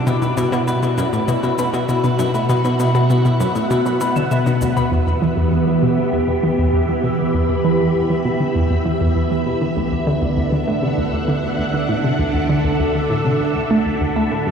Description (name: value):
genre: ambient, sequencer-driven space music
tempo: 99 BPM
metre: 4/4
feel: straight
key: E minor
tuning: A4 = 440 Hz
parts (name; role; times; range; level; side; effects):
- phased string machine; sustained chords; 0.0-14.5 s; B2 to B5; -19 LUFS; equal; ensemble chorus, phaser
- semi-hollow electric guitar; arpeggios; 0.0-14.5 s; D4 to B5; -27 LUFS; left 2 dB; auto-pan, ping-pong delay
- twinkling granular texture; texture; 0.0-4.9 s; F#4 to F#5; -35 LUFS; right 2 dB; none
- analog pluck; riff; 0.1-14.5 s; D2 to A3; -19 LUFS; equal; chorus, ping-pong delay
- shaker and bongos; percussion; 0.1-4.9 s; none; -34 LUFS; left 1 dB; ping-pong delay
room: wet huge ambient reverb, RT60 8.5 s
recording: played on a big sound system in a bare room, large studio reverb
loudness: -16 LUFS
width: side -7 dB against mid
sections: 0.0-4.9 A section; 4.9-14.5 A section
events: none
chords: 0.1 Bsus4; 4.9 Em; 9.8 Dadd9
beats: | 0.07 0.68 1.28 1.89 | 2.50 3.10 3.71 4.31 | 4.92 5.53 6.13 6.74 | 7.34 7.95 8.55 9.16 | 9.77 10.37 10.98 11.59 | 12.19 12.80 13.40 14.01